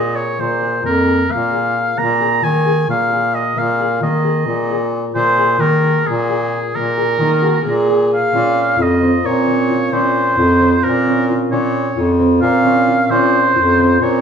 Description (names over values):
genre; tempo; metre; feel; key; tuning
contemporary instrumental, chamber music in an uneven meter; 264 BPM (eighths); 7/8; straight; Bb minor; A4 = 440 Hz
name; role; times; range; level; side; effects
clear oboe; melody; 0.0-14.2 s; Ab4 to Bb5; -17 LUFS; right 1 dB; none
concert harp; arpeggios; 0.0-14.2 s; Bb3 to Bb4; -19 LUFS; left 1 dB; none
clear bass clarinet; bass; 0.0-14.2 s; F2 to Eb3; -18 LUFS; equal; none
dark viola; second line; 7.2-8.3 s; Eb4 to Ab4; -18 LUFS; right 3 dB; none
room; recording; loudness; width
wet studio reverb, RT60 0.9 s; heard from further back in the room; -13 LUFS; side -7 dB against mid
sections
0.0-8.3 A section; 8.3-14.2 B section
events
none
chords
0.0 Bb7(no3); 2.0 Absus2/Bb; 8.3 Bbmadd9